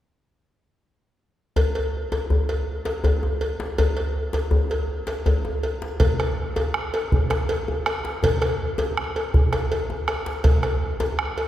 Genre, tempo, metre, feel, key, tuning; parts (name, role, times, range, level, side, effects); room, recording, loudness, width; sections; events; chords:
west african traditional, West African drum ensemble; 108 BPM (dotted quarters); 12/8; straight
cowbell; percussion; 1.6-11.5 s; -27 LUFS; left 1 dB
djembe; percussion; 1.6-11.5 s; -24 LUFS; left 1 dB
bombo; percussion; 6.0-11.4 s; -24 LUFS; right 2 dB
wet concert hall reverb, RT60 2.2 s; heard from further back in the room; -21 LUFS; side -12 dB against mid
1.6-6.0 A section; 6.0-11.5 B section